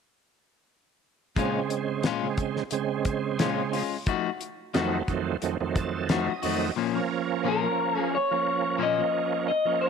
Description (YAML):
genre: straight-eighth soul blues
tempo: 89 BPM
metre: 4/4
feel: swing 54% on 16ths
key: Bb minor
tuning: A4 = 440 Hz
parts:
  - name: bright tonewheel organ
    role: accompaniment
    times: 1.4-9.9 s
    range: F2 to A5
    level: -28 LUFS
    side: right 8 dB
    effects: slow rotary speaker, overdrive, chorus vibrato
  - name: electric guitar at the edge of break-up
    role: stabs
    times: 1.4-9.0 s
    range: Bb2 to Gb4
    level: -30 LUFS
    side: left 11 dB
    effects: none
  - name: damped 70s drum kit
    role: drums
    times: 1.4-6.6 s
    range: hi-hat, kick drum, snare drum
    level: -29 LUFS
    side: left 1 dB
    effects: none
  - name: electric guitar through a small old amp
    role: melody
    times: 7.5-9.9 s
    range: Bb4 to Eb5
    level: -25 LUFS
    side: left 3 dB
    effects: slapback echo
room: light reverb, small room ambience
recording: 1960s-style stereo with parts hard left and right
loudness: -25 LUFS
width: side -6 dB against mid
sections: 1.4-6.8 A section; 6.8-9.9 B section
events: tonewheel organ fill 5.4-6.8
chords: 1.4 Bbm7; 4.1 F7b9; 6.8 Bbm